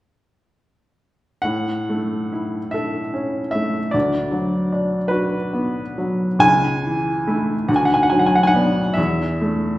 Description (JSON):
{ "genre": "classical, romantic nocturne for solo piano", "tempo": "44-51 BPM (dotted quarters)", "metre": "12/8", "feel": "rubato", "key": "A major", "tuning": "A4 = 436 Hz", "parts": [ { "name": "clear upright piano", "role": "solo", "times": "1.4-9.8 s", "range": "C#2 to G#5", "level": "-17 LUFS", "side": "equal", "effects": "none" } ], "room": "wet recital hall reverb, RT60 1.4 s", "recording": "heard from further back in the room", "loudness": "-17 LUFS", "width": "side -16 dB against mid", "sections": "1.5-9.8 A section", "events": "none", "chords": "1.5 A; 3.9 Bm/D; 6.4 A/C#; 7.7 Bm/D; 9.0 A5/E", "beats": "| 1.46 2.74 3.95 5.12 | 6.43 7.69 8.97" }